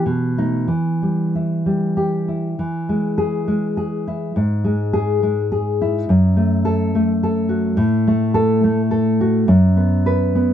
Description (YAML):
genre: romantic piece for solo classical guitar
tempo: 91-108 BPM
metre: 3/4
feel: rubato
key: E major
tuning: A4 = 441 Hz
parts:
  - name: nylon-string guitar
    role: solo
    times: 0.0-10.5 s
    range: F#2 to B4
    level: -16 LUFS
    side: equal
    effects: none
room: light reverb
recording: dry, close 1970s-style studio recording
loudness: -16 LUFS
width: side -9 dB against mid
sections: 0.0-2.6 A section; 2.6-10.5 B section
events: none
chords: 0.1 B7; 0.7 Em; 2.6 E; 4.4 E/G#; 6.1 F#m; 7.8 F#m/A; 9.5 B5/F#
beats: 0.06 | 0.69 1.34 1.97 | 2.59 3.19 3.78 | 4.36 4.95 5.52 | 6.09 6.66 7.22 | 7.79 8.35 8.92 | 9.49 10.07